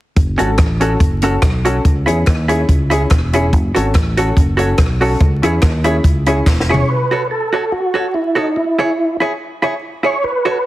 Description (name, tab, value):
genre	ska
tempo	143 BPM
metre	4/4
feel	swing 53% on 8ths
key	unclear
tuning	A4 = 442 Hz
part	fingered electric bass	bass	0.2-6.8 s	E1 to E2	-17 LUFS	equal	none
part	compact cocktail drum kit	drums	0.2-6.8 s	hi-hat, kick drum, rim click, snare drum, toms	-14 LUFS	equal	none
part	hollow-body jazz guitar	accompaniment	0.4-10.6 s	C#4 to C#5	-19 LUFS	right 2 dB	none
part	dark upright piano	stabs	0.4-6.8 s	C#4 to A4	-20 LUFS	left 1 dB	slapback echo
part	group handclap	percussion	0.6-6.6 s	none	-32 LUFS	right 1 dB	slapback echo
part	percussive tonewheel organ	melody	6.7-10.7 s	D#4 to C#5	-17 LUFS	right 1 dB	chorus vibrato, fast rotary speaker, slapback echo
room	light reverb, studio reverb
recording	heavily compressed radio sound, vinyl crackle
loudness	-13 LUFS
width	side -15 dB against mid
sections	0.2-6.9 A section; 6.9-10.7 B section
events	drum fill 6.5-6.9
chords	0.2 F#m; 1.8 C#m; 3.5 F#m; 5.2 C#m; 6.9 F#m; 8.6 C#m